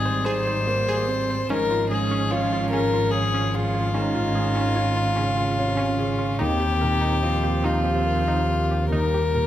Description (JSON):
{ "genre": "neoclassical piano and strings", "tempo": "49 BPM (dotted quarters)", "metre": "6/8", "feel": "rubato", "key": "unclear", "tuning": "A4 = 440 Hz", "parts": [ { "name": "rich violin", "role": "melody", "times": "0.0-9.5 s", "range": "F4 to C5", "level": "-24 LUFS", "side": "left 3 dB", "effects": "none" }, { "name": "rich cello", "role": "second line", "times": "0.0-9.5 s", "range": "C3 to G3", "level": "-31 LUFS", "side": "right 5 dB", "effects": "none" }, { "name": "dark concert grand piano", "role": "accompaniment", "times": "0.0-9.5 s", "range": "Eb2 to Db5", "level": "-30 LUFS", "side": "right 1 dB", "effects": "none" }, { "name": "dark viola", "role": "accompaniment", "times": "0.0-9.5 s", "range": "Bb3 to Eb4", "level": "-30 LUFS", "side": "right 3 dB", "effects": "none" }, { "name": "dark double bass", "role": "bass", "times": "0.0-9.5 s", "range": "Ab1 to Eb2", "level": "-26 LUFS", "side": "equal", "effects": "none" }, { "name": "glassy wavetable pluck", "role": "arpeggios", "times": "0.1-9.5 s", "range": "Db4 to Eb5", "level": "-32 LUFS", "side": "right 2 dB", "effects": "chorus, slapback echo" } ], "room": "moderate scoring stage reverb, RT60 1.8 s", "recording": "none", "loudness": "-20 LUFS", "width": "side -12 dB against mid", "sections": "0.0-9.5 A section", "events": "none", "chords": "0.0 Cm7/Ab; 1.5 Db/Ab; 6.4 Ebadd9" }